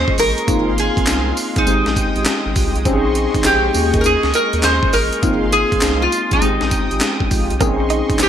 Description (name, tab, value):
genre	R&B, new jack swing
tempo	101 BPM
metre	4/4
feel	swing 65% on 16ths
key	Bb dorian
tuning	A4 = 440 Hz
part	metal-body resonator slide guitar	melody	0.0-8.3 s	Eb4 to C5	-18 LUFS	equal	wide subtle chorus, digital delay
part	tine electric piano	accompaniment	0.0-8.3 s	Ab3 to Ab4	-22 LUFS	left 2 dB	overdrive, fast stereo tremolo
part	brassy analog pad	sustained chords	0.0-8.3 s	Ab3 to Eb6	-26 LUFS	equal	chorus
part	round analog bass	bass	0.0-8.3 s	Ab1 to Eb2	-22 LUFS	equal	none
part	breakbeat sampler-style drum kit	drums	0.1-8.3 s	handclaps, hi-hat, kick drum, snare drum, tambourine	-20 LUFS	equal	gated reverb
part	mellow synth brass	stabs	0.5-8.3 s	Ab3 to C5	-25 LUFS	right 2 dB	chorus
part	direct-recorded clean electric guitar	riff	7.6-8.2 s	Bb3 to Eb4	-23 LUFS	right 6 dB	wide subtle chorus
room	moderate plate reverb, RT60 3.6 s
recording	bright 1980s-style digital production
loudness	-14 LUFS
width	side -9 dB against mid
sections	0.0-8.3 A section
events	none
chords	0.5 Ab6; 1.7 Fm9/Ab; 2.9 Bbm11; 3.7 Eb7sus4; 5.2 Ab6; 6.4 Fm9/Ab; 7.6 Bbm11